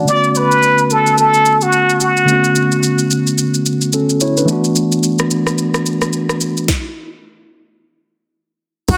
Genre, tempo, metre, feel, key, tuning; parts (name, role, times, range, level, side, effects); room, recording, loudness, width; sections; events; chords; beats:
amapiano; 109 BPM; 4/4; swing 58% on 16ths; B minor; A4 = 435 Hz
tine electric piano; accompaniment; 0.0-6.7 s; D3 to A5; -18 LUFS; equal
trumpet with plunger mute; melody; 0.1-2.8, 8.9-9.0 s; F#4 to D5; -15 LUFS; equal; delay
smooth R&B drum kit; drums; 0.1-9.0 s; crash cymbal, kick drum, rim click, shaker, snare drum; -22 LUFS; equal
tight log drum bass; bass; 8.9-9.0 s; B1; -17 LUFS; equal
congas; percussion; 8.9-9.0 s; -23 LUFS; equal
moderate lush hall reverb, RT60 1.7 s, digital ambience; dense, heavily limited modern master; -14 LUFS; mono
0.0-8.9 A section
stop 6.7-8.9
0.1 Bm9; 4.5 E9sus4; 6.7 N.C.
| 0.08 0.63 1.18 1.73 | 2.28 2.83 3.38 3.93 | 4.48 5.03 5.58 6.13 | 6.68 7.23 7.79 8.34 | 8.89